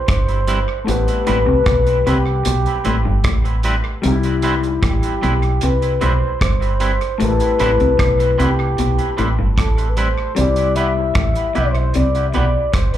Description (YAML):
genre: lovers rock reggae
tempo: 76 BPM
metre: 4/4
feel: straight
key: unclear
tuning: A4 = 440 Hz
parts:
  - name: breathy flugelhorn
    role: melody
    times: 0.0-13.0 s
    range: G4 to E5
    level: -20 LUFS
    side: left 1 dB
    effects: tape echo, slapback echo
  - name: dark concert grand piano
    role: accompaniment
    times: 0.0-13.0 s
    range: G3 to C5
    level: -25 LUFS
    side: left 4 dB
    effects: tape echo, slapback echo
  - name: electric guitar through a small old amp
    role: riff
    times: 0.1-13.0 s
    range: G2 to C3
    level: -24 LUFS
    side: left 4 dB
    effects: lush chorus, slapback echo
  - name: deep dub fingered electric bass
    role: bass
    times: 0.1-13.0 s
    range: G1 to C2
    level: -18 LUFS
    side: equal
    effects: none
  - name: damped 70s drum kit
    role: drums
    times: 0.1-13.0 s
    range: hi-hat, kick drum, rim click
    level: -22 LUFS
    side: right 1 dB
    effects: tape echo
  - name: twangy electric guitar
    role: stabs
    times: 0.3-13.0 s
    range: G3 to B4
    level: -25 LUFS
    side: right 3 dB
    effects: tape echo, slapback echo
room: light reverb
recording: live gig heard through the venue's PA, club reverb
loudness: -14 LUFS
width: side -11 dB against mid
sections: 0.0-13.0 A section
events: none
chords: 0.0 Am9